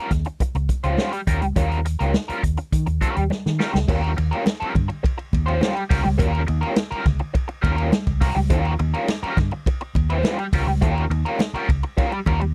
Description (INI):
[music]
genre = funk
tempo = 104 BPM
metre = 4/4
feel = straight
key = Eb mixolydian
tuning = A4 = 440 Hz
[part]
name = crunchy overdriven guitar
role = accompaniment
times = 0.0-12.4 s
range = G3 to C5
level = -27 LUFS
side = equal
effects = wah
[part]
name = vintage muted fingered electric bass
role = bass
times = 0.1-12.5 s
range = C2 to Eb3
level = -24 LUFS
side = equal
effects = none
[part]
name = vintage drum kit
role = drums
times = 0.1-12.5 s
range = crash cymbal, hi-hat, kick drum, ride cymbal, snare drum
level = -25 LUFS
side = equal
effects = none
[part]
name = congas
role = percussion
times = 0.4-12.4 s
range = none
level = -32 LUFS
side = equal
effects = none
[sound]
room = little or no reverb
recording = dry, close 1970s-style studio recording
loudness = -22 LUFS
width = mono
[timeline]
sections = 0.0-3.9 A section; 3.9-12.5 B section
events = drum fill 3.3-3.9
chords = 0.0 Eb9